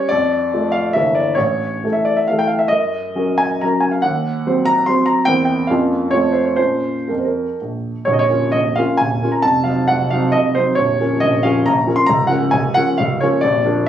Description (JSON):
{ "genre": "classical, romantic triple-time dance for piano with dotted rhythms", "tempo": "113-158 BPM", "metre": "3/4", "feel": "rubato", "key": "Bb minor", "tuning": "A4 = 438 Hz", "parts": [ { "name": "warm grand piano", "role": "solo", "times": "0.0-13.9 s", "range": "Bb0 to C6", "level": "-14 LUFS", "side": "equal", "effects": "none" } ], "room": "light reverb", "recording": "recorded on a phone in the room, club reverb", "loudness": "-14 LUFS", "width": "side -10 dB against mid", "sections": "0.0-8.1 A section; 8.1-13.9 B section", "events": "none", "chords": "0.1 Dm/F; 1.0 Edim/G; 1.4 A; 2.7 Gb6; 4.0 Cdim/Eb; 5.3 C7/E; 5.7 Bbm/F; 6.1 F; 6.6 Bbm; 9.5 F5; 10.8 Bbm; 12.1 Bbm/Db" }